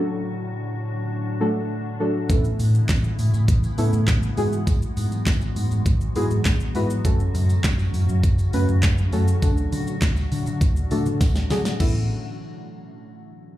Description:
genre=dance-pop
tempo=101 BPM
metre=4/4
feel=straight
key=A major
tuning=A4 = 440 Hz
part: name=deep mellow chord stab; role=accompaniment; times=0.0-12.1 s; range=F#3 to B4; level=-26 LUFS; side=equal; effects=chorus, sidechain pumping, slapback echo
part: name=glassy FM pad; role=sustained chords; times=0.0-12.1 s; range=A2 to F#4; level=-30 LUFS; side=equal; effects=ensemble chorus, built-in reverb, sidechain pumping
part: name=vintage muted fingered electric bass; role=bass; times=2.3-12.1 s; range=F#1 to D3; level=-22 LUFS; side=equal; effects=sidechain pumping
part: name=pop drum kit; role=drums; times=2.3-11.9 s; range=crash cymbal, handclaps, hi-hat, kick drum, shaker, snare drum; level=-22 LUFS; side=equal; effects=none
part: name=tambourine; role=percussion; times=2.3-12.1 s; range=none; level=-45 LUFS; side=right 4 dB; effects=none
room=digital ambience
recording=live gig heard through the venue's PA, club reverb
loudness=-19 LUFS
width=side -14 dB against mid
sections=0.0-11.8 A section; 11.8-13.6 B section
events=drum fill 11.2-11.8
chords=0.0 D; 2.3 Aadd9; 4.4 Eadd9/G#; 7.0 F#m; 9.4 D; 11.8 Aadd9

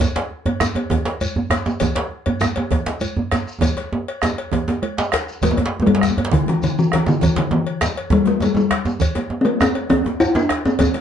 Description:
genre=west african traditional, West African drum ensemble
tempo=134 BPM (dotted quarters)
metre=12/8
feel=straight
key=C major pentatonic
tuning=A4 = 443 Hz
part: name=bombo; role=percussion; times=0.0-11.0 s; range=none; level=-24 LUFS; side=right 3 dB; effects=none
part: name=congas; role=percussion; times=0.0-11.0 s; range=none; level=-27 LUFS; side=right 8 dB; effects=none
part: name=cowbell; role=percussion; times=0.0-11.0 s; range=none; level=-29 LUFS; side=left 4 dB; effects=none
part: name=djembe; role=percussion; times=0.0-11.0 s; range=none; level=-28 LUFS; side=left 4 dB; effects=none
part: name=djembe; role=percussion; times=0.0-10.9 s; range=none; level=-22 LUFS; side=right 2 dB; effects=none
part: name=shekere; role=percussion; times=0.0-10.9 s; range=none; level=-30 LUFS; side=left 2 dB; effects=none
part: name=talking drum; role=melody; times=5.4-11.0 s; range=D3 to E4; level=-17 LUFS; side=left 2 dB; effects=none
room=light reverb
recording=nothing above 10.9 kHz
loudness=-17 LUFS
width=side -8 dB against mid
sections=0.0-5.4 A section; 5.4-11.0 B section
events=drum fill 3.6-5.4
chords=none

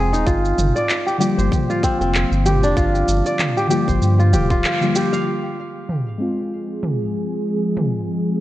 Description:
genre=organic downtempo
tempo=96 BPM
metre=4/4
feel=swing 56% on 16ths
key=F dorian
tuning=A4 = 440 Hz
part: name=muted felt-like synth keys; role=accompaniment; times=0.0-8.4 s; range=D3 to F4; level=-24 LUFS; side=left 2 dB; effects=chorus, sidechain pumping, low-pass filter, digital delay
part: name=kora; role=arpeggios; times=0.0-6.4 s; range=C4 to F5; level=-20 LUFS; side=equal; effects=digital delay
part: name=warm sub bass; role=bass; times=0.0-4.6 s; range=D1 to G2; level=-18 LUFS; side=equal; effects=tube saturation, sidechain pumping
part: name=organic electronic drum kit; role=drums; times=0.1-7.9 s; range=handclaps, shaker, toms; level=-24 LUFS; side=right 1 dB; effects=low-pass filter on perc, low-pass filter on toms, low-pass filter on snare
part: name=electronic kick drum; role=drums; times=0.3-4.6 s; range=none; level=-21 LUFS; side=equal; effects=none
part: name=warm analog pad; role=sustained chords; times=5.3-8.4 s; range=F3 to Ab4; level=-23 LUFS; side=equal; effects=chorus, sidechain pumping
room=moderate echo chamber reverb, RT60 2.2 s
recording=worn, warbling old tape, cassette tape, warbly pitch drift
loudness=-17 LUFS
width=side -14 dB against mid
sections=0.0-5.3 A section; 5.3-8.4 B section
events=break 4.6-5.3; band accent 4.6-5.0; filter sweep on drum 5.3-8.4; filter sweep on synth keys 5.3-8.4; filter sweep on analog synth pad 5.3-8.4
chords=0.3 Gm7; 5.3 Fm

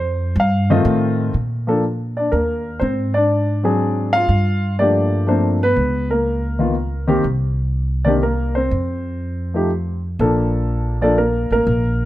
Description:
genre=jazz piano trio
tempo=122 BPM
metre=3/4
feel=swing 67% on 8ths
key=Bb major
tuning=A4 = 441 Hz
part: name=dark baby grand piano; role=melody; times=0.0-12.1 s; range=Eb3 to F5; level=-18 LUFS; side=left 1 dB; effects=none
part: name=upright bass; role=bass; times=0.0-12.1 s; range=A1 to Bb2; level=-20 LUFS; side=equal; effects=none
room=light reverb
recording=close, detailed microphones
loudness=-16 LUFS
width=side -14 dB against mid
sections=0.0-1.3 A section; 1.3-12.1 B section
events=grand piano solo 0.0-1.3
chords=0.0 F7; 1.3 Bb; 2.8 Ab7#11; 4.3 Gm9; 5.8 Db7(no3); 7.2 C7(no3); 8.7 F5; 10.2 Bbmaj7

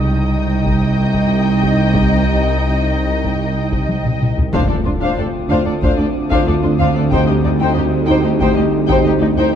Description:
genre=cinematic, suspense film score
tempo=93 BPM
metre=4/4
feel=straight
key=C phrygian, D phrygian from 4.5 s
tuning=A4 = 442 Hz
part: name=muted studio violin section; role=melody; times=0.0-9.5 s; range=C5 to G5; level=-25 LUFS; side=left 5 dB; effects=none
part: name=muted studio violin section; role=second line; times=0.0-9.6 s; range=Eb4 to Eb5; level=-23 LUFS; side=left 3 dB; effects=none
part: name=muted studio viola section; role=accompaniment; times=0.0-9.5 s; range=D4 to Eb4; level=-23 LUFS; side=right 2 dB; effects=none
part: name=muted studio cello section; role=bass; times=0.0-9.4 s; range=C2 to D2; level=-20 LUFS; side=right 2 dB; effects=none
part: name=muted studio double bass section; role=bass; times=0.0-9.4 s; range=C2 to D2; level=-22 LUFS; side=right 1 dB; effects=none
part: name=bowed-like drone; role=drone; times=0.0-9.6 s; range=C2 to D2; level=-21 LUFS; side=right 1 dB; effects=built-in reverb
part: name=Celtic harp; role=texture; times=0.0-9.1 s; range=Db5 to Eb6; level=-38 LUFS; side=equal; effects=none
part: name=muted studio violin section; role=texture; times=0.0-9.3 s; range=D6 to G6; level=-34 LUFS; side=left 4 dB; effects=none
part: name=taiko ensemble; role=drums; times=0.7-9.5 s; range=none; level=-21 LUFS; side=left 1 dB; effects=none
part: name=mellow French horn section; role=sustained chords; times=4.5-9.6 s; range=C4 to G4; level=-22 LUFS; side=left 4 dB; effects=none
part: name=mellow trombone section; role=sustained chords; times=4.5-9.6 s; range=D3 to Eb4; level=-23 LUFS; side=right 3 dB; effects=none
part: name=impact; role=sound effects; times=4.5-7.1 s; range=none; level=-23 LUFS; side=left 2 dB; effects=none
room=wet scoring stage reverb, RT60 1.6 s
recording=dark, warm production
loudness=-13 LUFS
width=side -9 dB against mid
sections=0.0-4.5 A section; 4.5-9.6 B section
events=drum fill 3.9-4.5; impact 4.5-7.1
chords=0.0 Cm; 4.5 Dm7; 7.1 Cmadd9/D

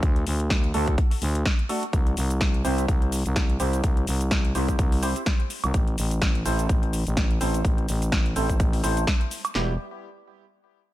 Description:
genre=bass house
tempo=126 BPM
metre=4/4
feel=swing 56% on 16ths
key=unclear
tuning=A4 = 443 Hz
part: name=growling FM bass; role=bass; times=0.0-9.8 s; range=E1 to D2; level=-25 LUFS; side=equal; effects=overdrive, sidechain pumping
part: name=big-room dance drum kit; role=drums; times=0.0-9.7 s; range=handclaps, kick drum, snare drum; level=-23 LUFS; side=equal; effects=none
part: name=big-room dance drum kit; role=drums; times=0.0-9.5 s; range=hi-hat, shaker, snare drum, woodblock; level=-30 LUFS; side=equal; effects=none
part: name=percussive organ stab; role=stabs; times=0.7-9.7 s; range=G3 to C5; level=-31 LUFS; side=right 1 dB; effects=lush chorus, sidechain pumping, ping-pong delay
room=digital ambience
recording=none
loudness=-21 LUFS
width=side -15 dB against mid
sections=0.0-9.6 A section; 9.6-10.9 B section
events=filter sweep on FM bass 0.0-9.6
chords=0.0 D; 1.9 C; 5.7 Am; 9.6 Em

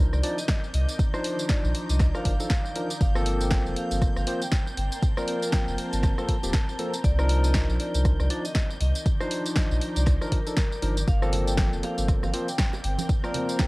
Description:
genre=deep house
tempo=119 BPM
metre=4/4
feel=swing 58% on 16ths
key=G minor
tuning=A4 = 441 Hz
part: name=barky tine electric piano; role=stabs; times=0.0-13.7 s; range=F3 to D5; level=-31 LUFS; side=equal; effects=sidechain pumping, cassette tape
part: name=sub bass with octave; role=bass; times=0.0-13.0 s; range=D1 to C2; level=-25 LUFS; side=equal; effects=sidechain pumping
part: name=granular cloud pad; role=texture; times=0.1-13.7 s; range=Eb3 to Bb5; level=-39 LUFS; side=left 1 dB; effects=built-in reverb, sidechain pumping, cassette tape
part: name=soft string machine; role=texture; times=0.0-13.7 s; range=G6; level=-44 LUFS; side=equal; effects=phaser, ensemble chorus, sidechain pumping, cassette tape
part: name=vibraphone with medium hard mallets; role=melody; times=0.1-13.7 s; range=Bb4 to A5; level=-36 LUFS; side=equal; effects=cassette tape, analog delay
part: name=punchy analog drum machine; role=drums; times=0.1-13.7 s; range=hi-hat, rim click, snare drum, tambourine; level=-32 LUFS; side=equal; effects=cassette tape
part: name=electronic kick drum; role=drums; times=0.5-13.7 s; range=none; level=-24 LUFS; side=equal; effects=overdrive, cassette tape
part: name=bongos and congas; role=percussion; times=11.3-13.7 s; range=none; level=-36 LUFS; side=right 6 dB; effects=none
room=digital ambience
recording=home recording on cassette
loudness=-23 LUFS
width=side -23 dB against mid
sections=0.0-13.7 A section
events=none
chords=0.0 Cm11; 3.0 Gm11; 7.0 Cm11; 11.1 Gm11

